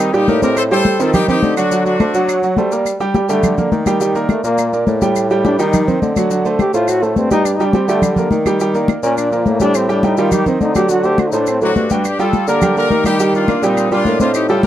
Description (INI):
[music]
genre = latin, salsa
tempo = 209 BPM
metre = 4/4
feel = straight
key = G minor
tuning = A4 = 439 Hz
[part]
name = bright horn section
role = melody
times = 0.0-2.4, 11.6-14.7 s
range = C4 to C5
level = -18 LUFS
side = left 2 dB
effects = none
[part]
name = clear baby grand piano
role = accompaniment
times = 0.0-14.7 s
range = F#3 to G5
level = -17 LUFS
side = right 3 dB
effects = none
[part]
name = clear bassoon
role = bass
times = 0.0-14.7 s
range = G2 to G3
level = -18 LUFS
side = equal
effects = none
[part]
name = claves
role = percussion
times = 0.0-14.5 s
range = none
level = -30 LUFS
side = right 16 dB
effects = none
[part]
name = congas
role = percussion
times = 0.1-14.7 s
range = none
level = -18 LUFS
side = left 2 dB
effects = none
[part]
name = maracas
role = percussion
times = 0.1-14.7 s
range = none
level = -32 LUFS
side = left 18 dB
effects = none
[part]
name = bright trombone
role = melody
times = 3.2-11.7 s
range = F3 to G4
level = -19 LUFS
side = left 2 dB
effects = none
[sound]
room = little or no reverb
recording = dry, close 1970s-style studio recording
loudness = -12 LUFS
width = side -12 dB against mid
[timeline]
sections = 0.0-2.9 A section; 2.9-12.0 B section; 12.0-14.7 A section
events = trombone solo 2.9-12.0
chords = 0.0 Ebmaj7; 0.6 Am7b5; 1.7 D7; 2.9 Gm; 4.0 Ebmaj7; 5.2 Am7b5; 6.3 D7; 7.5 Gm; 8.6 Ebmaj7; 9.8 Am7b5; 10.9 D7; 12.0 Gm7; 13.2 Ebmaj7